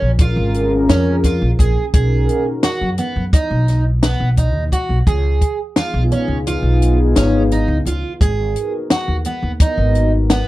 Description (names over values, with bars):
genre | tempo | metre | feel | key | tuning
progressive instrumental, band music in an uneven meter | 172 BPM (eighths) | 9/8 | straight | Db mixolydian | A4 = 440 Hz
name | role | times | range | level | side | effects
fingerpicked twelve-string acoustic guitar | arpeggios | 0.0-10.5 s | Cb4 to Ab4 | -22 LUFS | right 3 dB | none
upright bass | bass | 0.0-10.4 s | Ab1 to Gb2 | -17 LUFS | equal | none
dark analog pad | accompaniment | 0.3-10.1 s | Cb4 to Bb4 | -20 LUFS | left 2 dB | chorus, phaser
compact cocktail drum kit | drums | 0.2-10.5 s | hi-hat, kick drum, snare drum | -15 LUFS | equal | none
room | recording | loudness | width
little or no reverb | dry, close 1970s-style studio recording | -14 LUFS | side -17 dB against mid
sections
0.0-10.5 A section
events
none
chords
0.0 Bbm7; 1.9 Cbmaj7; 5.1 Db7; 8.2 Abm7